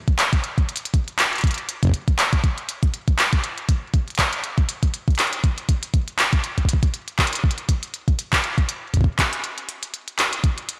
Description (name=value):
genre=IDM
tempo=120 BPM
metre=4/4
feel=swing 56% on 16ths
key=none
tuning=none
part: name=electronic kick drum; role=drums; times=0.1-10.6 s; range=none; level=-21 LUFS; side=equal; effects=overdrive, studio reverb
part: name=glitchy drum kit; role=drums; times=0.1-10.8 s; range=handclaps, hi-hat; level=-25 LUFS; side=equal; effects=overdrive, studio reverb, digital delay
room=moderate lush hall reverb, RT60 1.9 s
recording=blown-out, overdriven recording, overdrive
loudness=-22 LUFS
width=mono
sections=0.0-10.8 A section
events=break 9.4-10.4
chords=none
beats=| 0.44 0.94 1.44 1.94 | 2.44 2.94 3.44 3.94 | 4.44 4.94 5.44 5.94 | 6.44 6.94 7.44 7.94 | 8.44 8.94 9.44 9.94 | 10.44